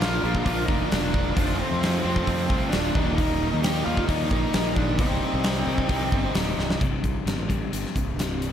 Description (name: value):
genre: quiet-loud alternative rock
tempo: 132 BPM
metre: 4/4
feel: straight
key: C dorian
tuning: A4 = 441 Hz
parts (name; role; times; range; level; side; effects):
- octave-fuzz lead guitar; melody; 0.0-6.3 s; C4 to G4; -28 LUFS; equal; distortion
- distorted electric guitar; riff; 0.0-6.8 s; C2 to Bb4; -34 LUFS; left 1 dB; overdrive
- fuzz guitar; riff; 0.0-6.8 s; C2 to Bb4; -32 LUFS; right 9 dB; distortion
- overdriven electric guitar; riff; 0.0-8.5 s; C2 to Bb4; -31 LUFS; left 11 dB; none
- fuzz fingered electric bass; bass; 0.0-8.5 s; C1 to F2; -28 LUFS; equal; overdrive
- huge arena drum kit; drums; 0.0-8.5 s; hi-hat, kick drum, snare drum; -26 LUFS; equal; none
- twelve-string electric guitar; arpeggios; 6.8-8.5 s; C2 to C3; -32 LUFS; equal; tremolo
room: studio reverb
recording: none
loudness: -22 LUFS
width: side -9 dB against mid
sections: 0.0-6.8 A section; 6.8-8.5 B section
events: drum fill 6.6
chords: 0.0 Bb; 1.4 F; 3.0 Eb; 5.0 Cm; 6.8 C5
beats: 0.01 0.46 0.92 | 1.37 1.82 2.27 2.73 | 3.18 3.63 4.09 4.54 | 5.00 5.45 5.91 6.36 | 6.82 7.27 7.73 8.19